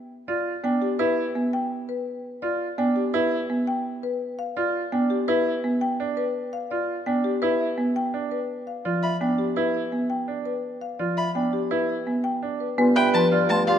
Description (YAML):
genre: classical, minimalist pattern music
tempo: 168 BPM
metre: 6/4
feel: straight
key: G mixolydian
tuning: A4 = 439 Hz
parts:
  - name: marimba with medium mallets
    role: melody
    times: 0.3-13.8 s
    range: G4 to G5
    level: -27 LUFS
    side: left 6 dB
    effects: none
  - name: bright concert grand piano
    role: arpeggios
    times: 0.3-13.8 s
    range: D4 to B4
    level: -28 LUFS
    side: right 6 dB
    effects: none
  - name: folk marimba with medium mallets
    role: accompaniment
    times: 0.6-13.7 s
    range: F3 to B3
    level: -26 LUFS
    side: right 2 dB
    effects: none
  - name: warm violin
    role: arpeggios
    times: 9.0-13.8 s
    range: F5 to B5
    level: -27 LUFS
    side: left 2 dB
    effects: none
  - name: warm clarinet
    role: second line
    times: 12.8-13.8 s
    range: F4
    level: -29 LUFS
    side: right 3 dB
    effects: none
  - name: dark bassoon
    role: bass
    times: 12.8-13.8 s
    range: G2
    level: -26 LUFS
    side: right 2 dB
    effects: none
room: moderate scoring stage reverb, RT60 2.0 s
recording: none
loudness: -22 LUFS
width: side -9 dB against mid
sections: 0.0-12.8 A section; 12.8-13.8 B section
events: none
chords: 0.0 G7; 12.8 G13